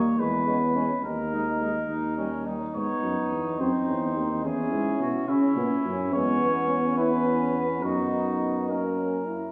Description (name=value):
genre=classical, brass quintet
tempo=71 BPM (dotted quarters)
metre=6/8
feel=straight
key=unclear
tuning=A4 = 440 Hz
part: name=mellow trumpet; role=melody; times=0.0-9.5 s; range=E4 to C#5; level=-33 LUFS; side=equal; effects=none
part: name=warm trombone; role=accompaniment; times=0.0-9.5 s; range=G#3 to E4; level=-33 LUFS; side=equal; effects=none
part: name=clear tuba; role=bass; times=0.0-9.3 s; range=D#2 to C#3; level=-32 LUFS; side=equal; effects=none
part: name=warm flugelhorn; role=second line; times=0.5-9.3 s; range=C#4 to D#4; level=-36 LUFS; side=equal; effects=none
part: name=warm French horn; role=accompaniment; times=0.5-9.3 s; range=G3 to C#4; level=-32 LUFS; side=equal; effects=none
room=wet recital hall reverb, RT60 1.3 s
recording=heard from further back in the room, small room ambience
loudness=-26 LUFS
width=mono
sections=0.0-9.5 A section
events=none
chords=0.2 C#m/E; 1.0 D#sus4; 1.9 D#; 2.7 G#m; 3.6 D#m6; 4.4 C#m/E; 6.1 C#m7/E; 7.8 B/F#; 8.7 F#